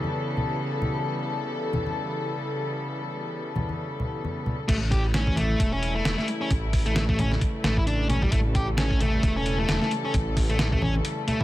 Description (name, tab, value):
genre	breakbeat, breaks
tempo	132 BPM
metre	4/4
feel	swing 57% on 16ths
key	unclear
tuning	A4 = 438 Hz
part	dark studio string section	sustained chords	0.0-11.4 s	C#3 to A4	-30 LUFS	left 1 dB	vintage 12-bit sampler grit, sidechain pumping
part	congas	percussion	0.0-11.4 s	none	-30 LUFS	left 1 dB	none
part	sludgy distorted guitar	riff	4.7-11.4 s	G3 to G4	-28 LUFS	equal	overdrive, tube saturation, vintage 12-bit sampler grit, dub echo
part	dark detuned saw bass	bass	4.7-11.4 s	E1 to A1	-26 LUFS	equal	none
part	dusty soul sampler-style drum kit	drums	4.7-11.4 s	crash cymbal, hi-hat, kick drum, snare drum	-26 LUFS	equal	studio reverb
room	moderate small room reverb, RT60 0.5 s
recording	none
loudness	-23 LUFS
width	side -15 dB against mid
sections	0.0-4.7 A section; 4.7-11.4 B section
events	drop 4.7-11.4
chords	0.0 A7